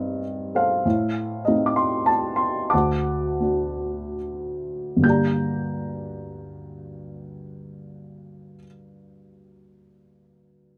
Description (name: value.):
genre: classical, lyrical solo piano.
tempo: 68-99 BPM.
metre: 3/4.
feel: rubato.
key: G minor.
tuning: A4 = 440 Hz.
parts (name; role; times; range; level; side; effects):
dark upright piano; solo; 0.0-10.8 s; D2 to G6; -25 LUFS; equal; none.
room: light reverb.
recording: none.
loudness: -23 LUFS.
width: mono.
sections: 0.0-5.0 A section; 5.0-10.2 B section.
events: slowing down 0.9-5.0.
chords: 0.0 Cm/G; 0.9 Adim; 2.7 D; 5.0 Gm.